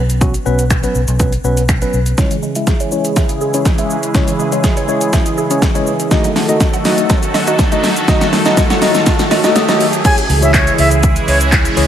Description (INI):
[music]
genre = dance-pop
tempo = 122 BPM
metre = 4/4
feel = straight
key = C# minor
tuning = A4 = 440 Hz
[part]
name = vintage muted fingered electric bass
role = bass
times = 0.0-2.1, 10.3-11.9 s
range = B1 to C#2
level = -15 LUFS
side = equal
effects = sidechain pumping
[part]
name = pop drum kit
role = drums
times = 0.1-11.9 s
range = crash cymbal, finger snaps, handclaps, hi-hat, kick drum, shaker, snare drum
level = -14 LUFS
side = equal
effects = overdrive
[part]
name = tine electric piano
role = accompaniment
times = 0.2-11.9 s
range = F#3 to D#6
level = -18 LUFS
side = left 2 dB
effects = medium stereo tremolo, low-pass filter
[part]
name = sweeping resonant pad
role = sustained chords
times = 2.2-11.9 s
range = C#3 to A4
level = -18 LUFS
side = right 1 dB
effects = chorus, sidechain pumping, low-pass filter
[part]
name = mallet-like synth pluck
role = arpeggios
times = 2.2-9.8 s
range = C#3 to A5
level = -24 LUFS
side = right 7 dB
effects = none
[part]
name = riser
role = sound effects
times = 5.4-10.1 s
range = none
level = -25 LUFS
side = equal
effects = none
[part]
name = breathy bright concert flute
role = melody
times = 10.1-11.4 s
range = C#5 to G#5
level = -16 LUFS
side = right 1 dB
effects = sidechain pumping, analog delay
[sound]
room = moderate lush hall reverb, RT60 1.7 s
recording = dreamy mix soaked in reverb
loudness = -11 LUFS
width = side -10 dB against mid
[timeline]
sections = 0.0-2.2 A section; 2.2-10.0 B section; 10.0-11.9 C section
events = build-up 2.2-10.0; drum fill 2.2-10.0; filter sweep 2.2-10.0; tine electric piano fill 9.3-10.0; drop 10.0-11.9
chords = 0.0 Bsus2; 2.2 C#m; 6.1 D#dim; 10.0 C#m